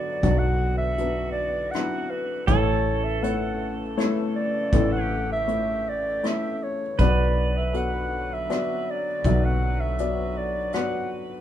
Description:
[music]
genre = acoustic folk-pop ballad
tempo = 80 BPM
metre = 3/4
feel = straight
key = B minor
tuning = A4 = 440 Hz
[part]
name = mellow clarinet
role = melody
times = 0.0-11.1 s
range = B4 to F#5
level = -28 LUFS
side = right 1 dB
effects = none
[part]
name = pedal steel guitar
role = second line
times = 0.0-11.4 s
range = F#4 to B4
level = -33 LUFS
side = right 6 dB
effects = none
[part]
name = felt-muted upright piano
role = accompaniment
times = 0.0-11.4 s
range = A1 to E5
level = -28 LUFS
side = left 3 dB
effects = none
[part]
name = warm chamber string section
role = sustained chords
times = 0.0-11.4 s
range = C#3 to B3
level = -34 LUFS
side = left 1 dB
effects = none
[part]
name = vintage muted fingered electric bass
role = bass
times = 0.2-10.7 s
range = A1 to B1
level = -26 LUFS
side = equal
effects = none
[part]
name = soft brush drum kit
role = drums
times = 0.2-10.9 s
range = hi-hat, kick drum, rim click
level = -26 LUFS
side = equal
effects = none
[sound]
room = moderate large studio reverb, RT60 0.9 s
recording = minimal, uncompressed stereo recording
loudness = -22 LUFS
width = side -11 dB against mid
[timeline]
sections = 0.0-11.4 A section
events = none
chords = 0.0 Bm; 2.5 A; 7.0 Bm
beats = | 0.24 0.98 1.73 | 2.48 3.23 3.98 | 4.73 5.48 6.23 | 6.99 7.74 8.49 | 9.24 9.99 10.74

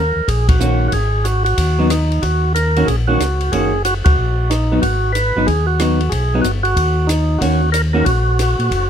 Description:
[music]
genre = soul jazz organ trio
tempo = 185 BPM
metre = 4/4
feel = swing 64% on 8ths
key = Eb minor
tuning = A4 = 440 Hz
[part]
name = percussive tonewheel organ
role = melody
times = 0.0-8.9 s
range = Eb4 to Cb5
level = -19 LUFS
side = right 1 dB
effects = slow rotary speaker
[part]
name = mellow tonewheel organ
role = bass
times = 0.0-8.9 s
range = Gb1 to Bb2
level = -17 LUFS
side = equal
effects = chorus vibrato, slow rotary speaker
[part]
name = compact cocktail drum kit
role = drums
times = 0.3-8.8 s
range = hi-hat, kick drum, ride cymbal, rim click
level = -22 LUFS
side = equal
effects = none
[part]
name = vintage hollow-body jazz guitar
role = accompaniment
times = 0.6-8.1 s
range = Eb3 to Gb4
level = -19 LUFS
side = equal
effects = none
[sound]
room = little or no reverb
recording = close, detailed microphones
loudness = -14 LUFS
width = side -9 dB against mid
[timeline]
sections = 0.0-8.9 A section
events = band accent 0.4, 4.0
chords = 0.0 Ebm7; 0.9 Ab7(no3); 2.2 Ebm7; 4.8 Abm7; 7.4 Ebm7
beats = 0.28 0.61 | 0.93 1.26 1.58 1.91 | 2.23 2.56 2.88 3.20 | 3.53 3.85 4.18 4.50 | 4.83 5.15 5.47 5.80 | 6.12 6.45 6.77 7.09 | 7.42 7.74 8.06 8.39 | 8.71

